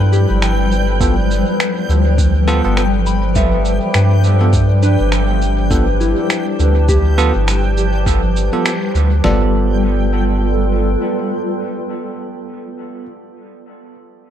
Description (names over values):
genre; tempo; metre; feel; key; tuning
ambient dub; 102 BPM; 4/4; swing 59% on 16ths; G mixolydian; A4 = 441 Hz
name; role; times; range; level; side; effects
granular cloud pad; sustained chords; 0.0-12.4 s; F3 to B5; -20 LUFS; left 1 dB; built-in reverb
soft synth bell; arpeggios; 0.0-14.1 s; D4 to B5; -24 LUFS; left 3 dB; chorus, phaser, dub echo
soft dub sub bass; bass; 0.0-11.0 s; G1 to G2; -14 LUFS; equal; tube saturation
backwards swelling texture; texture; 0.0-9.3 s; G5; -28 LUFS; right 1 dB; built-in reverb
electronic shaker and finger snaps; drums; 0.1-9.1 s; none; -23 LUFS; right 1 dB; overdrive, dub echo
bell-like tine electric piano; stabs; 1.0-13.1 s; B3 to A4; -23 LUFS; right 3 dB; medium stereo tremolo, dub echo
lo-fi sampler-style drum kit; drums; 1.0-9.4 s; kick drum, snare drum, toms; -17 LUFS; equal; overdrive
room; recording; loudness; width
light reverb, digital ambience; none; -12 LUFS; side -10 dB against mid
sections
0.0-9.2 A section; 9.2-11.6 B section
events
band accent 8.7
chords
0.0 G9